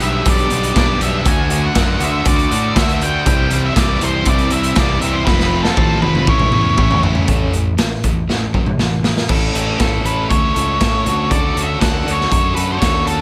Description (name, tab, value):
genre	quiet-loud alternative rock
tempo	119 BPM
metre	4/4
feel	straight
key	unclear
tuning	A4 = 440 Hz
part	octave-fuzz lead guitar	melody	0.0-7.0, 10.1-13.2 s	A4 to G#5	-22 LUFS	equal	distortion, slapback echo
part	high-gain distorted guitar	riff	0.0-13.2 s	A2 to A4	-24 LUFS	equal	distortion
part	overdriven electric guitar	riff	0.0-7.3 s	A2 to G4	-25 LUFS	equal	phaser
part	fuzz fingered electric bass	bass	0.0-13.2 s	F1 to A2	-23 LUFS	equal	overdrive
part	raw garage drum kit	drums	0.0-13.2 s	crash cymbal, hi-hat, kick drum, snare drum, toms	-19 LUFS	equal	none
part	electric guitar through a small old amp	arpeggios	7.3-13.2 s	A2 to A4	-28 LUFS	equal	slapback echo
room	light reverb, small room ambience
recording	none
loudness	-16 LUFS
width	mono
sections	0.0-7.3 A section; 7.3-9.3 B section; 9.3-13.2 C section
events	drum fill 5.3-7.3, 8.3-9.3; lead electric guitar solo 9.3-13.2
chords	0.0 G/B; 1.3 D; 3.3 C; 5.3 F; 6.3 A; 7.3 A5; 9.3 A; 11.1 Dmaj7